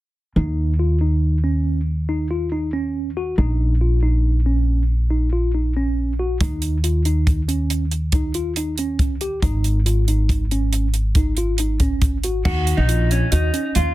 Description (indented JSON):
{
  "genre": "progressive instrumental, band music in an uneven meter",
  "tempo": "139 BPM",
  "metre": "7/4",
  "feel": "straight",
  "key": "Eb minor",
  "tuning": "A4 = 438 Hz",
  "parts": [
    { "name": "mellow tine electric piano", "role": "arpeggios", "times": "0.4-13.9 s", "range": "Db4 to G4", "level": "-25 LUFS", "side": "equal", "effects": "medium stereo tremolo" },
    { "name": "upright bass", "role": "bass", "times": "0.4-13.9 s", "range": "Ab1 to Eb2", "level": "-19 LUFS", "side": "equal", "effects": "none" },
    { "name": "compact cocktail drum kit", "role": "drums", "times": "6.4-13.9 s", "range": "crash cymbal, hi-hat, kick drum", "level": "-21 LUFS", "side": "equal", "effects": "none" },
    { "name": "hollow-body jazz guitar", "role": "melody", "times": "12.5-13.9 s", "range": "Db4 to Gb4", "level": "-23 LUFS", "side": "equal", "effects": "digital delay" }
  ],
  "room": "little or no reverb",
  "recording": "dense, heavily limited modern master",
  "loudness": "-18 LUFS",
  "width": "side -16 dB against mid",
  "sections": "0.4-12.5 A section; 12.5-13.9 B section",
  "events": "none",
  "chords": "0.4 Eb7(no3); 3.4 Bbm; 6.4 Eb7(no3); 9.4 Ab5; 12.5 Ebm7"
}